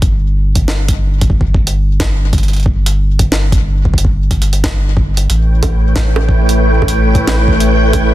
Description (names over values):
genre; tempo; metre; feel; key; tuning
IDM; 91 BPM; 4/4; swing 62% on 16ths; unclear; A4 = 440 Hz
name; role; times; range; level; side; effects
warm sub bass; bass; 0.0-8.1 s; G1 to A1; -13 LUFS; equal; none
electronic kick drum; drums; 0.0-8.1 s; none; -14 LUFS; equal; none
jungle sampler-style drum kit; drums; 0.0-8.1 s; bongos, hi-hat, snare drum; -20 LUFS; right 2 dB; ping-pong delay
soft string machine; sustained chords; 5.5-8.1 s; A3 to G5; -14 LUFS; equal; ensemble chorus
room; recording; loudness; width
little or no reverb; dense, heavily limited modern master; -10 LUFS; side -14 dB against mid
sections
0.0-8.1 A section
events
none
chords
0.0 N.C.; 5.3 A7